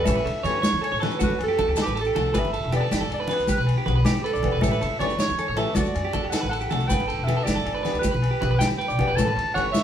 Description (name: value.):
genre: highlife guitar band.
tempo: 105 BPM (dotted quarters).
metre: 12/8.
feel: straight.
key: G major.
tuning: A4 = 440 Hz.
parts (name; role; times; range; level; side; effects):
clear clarinet; melody; 0.0-9.8 s; G4 to A5; -28 LUFS; right 2 dB; none.
clean electric guitar; arpeggios; 0.0-9.8 s; F#4 to D5; -28 LUFS; right 3 dB; spring reverb.
upright bass; bass; 0.0-9.7 s; E1 to A2; -27 LUFS; left 1 dB; none.
picked steel-string acoustic guitar; accompaniment; 0.1-9.7 s; E3 to G4; -30 LUFS; left 3 dB; none.
vintage drum kit; drums; 0.1-9.8 s; kick drum, ride cymbal, snare drum; -31 LUFS; equal; none.
agogo bells; percussion; 0.1-9.8 s; none; -37 LUFS; left 9 dB; none.
congas; percussion; 0.1-9.8 s; none; -29 LUFS; equal; none.
maracas; percussion; 0.1-9.8 s; none; -38 LUFS; left 5 dB; none.
room: wet large studio reverb, RT60 0.9 s.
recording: band playing live in one room.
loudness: -21 LUFS.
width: side -9 dB against mid.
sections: 0.0-9.8 A section.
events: none.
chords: 0.1 A7; 1.2 D; 2.3 G; 4.6 A7; 5.8 D; 6.9 G; 9.2 A7.